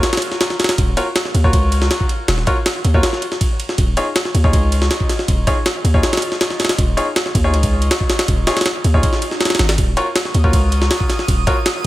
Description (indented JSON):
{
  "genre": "drum and bass, jungle",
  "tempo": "160 BPM",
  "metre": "4/4",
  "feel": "straight",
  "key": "Eb minor",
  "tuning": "A4 = 438 Hz",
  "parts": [
    { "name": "bright baby grand piano", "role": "stabs", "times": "0.0-11.6 s", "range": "Eb4 to Db5", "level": "-22 LUFS", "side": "left 1 dB", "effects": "vintage 12-bit sampler grit, dub echo" },
    { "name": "jungle sampler-style drum kit", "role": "drums", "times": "0.0-11.9 s", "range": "kick drum, ride cymbal, snare drum", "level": "-17 LUFS", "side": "equal", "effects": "none" },
    { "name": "long sustained 808-style bass", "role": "bass", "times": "0.8-11.9 s", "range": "Eb1 to Eb2", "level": "-16 LUFS", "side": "equal", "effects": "none" },
    { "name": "swell", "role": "sound effects", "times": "9.2-9.8 s", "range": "none", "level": "-29 LUFS", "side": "equal", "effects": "none" },
    { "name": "twinkling granular texture", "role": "texture", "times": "10.3-11.9 s", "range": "Eb6", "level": "-28 LUFS", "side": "right 5 dB", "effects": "built-in reverb" }
  ],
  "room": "little or no reverb",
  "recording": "none",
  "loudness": "-14 LUFS",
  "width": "side -16 dB against mid",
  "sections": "0.0-11.9 A section",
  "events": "swell 9.2-9.8",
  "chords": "0.0 Ebm9; 3.8 Dbadd9/Eb; 9.8 Ebm9",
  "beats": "0.03 0.41 | 0.78 1.16 1.53 1.91 | 2.28 2.66 3.03 3.41 | 3.78 4.16 4.53 4.91 | 5.28 5.66 6.03 6.41 | 6.78 7.16 7.53 7.91 | 8.28 8.66 9.03 9.41 | 9.78 10.16 10.53 10.91 | 11.28 11.66"
}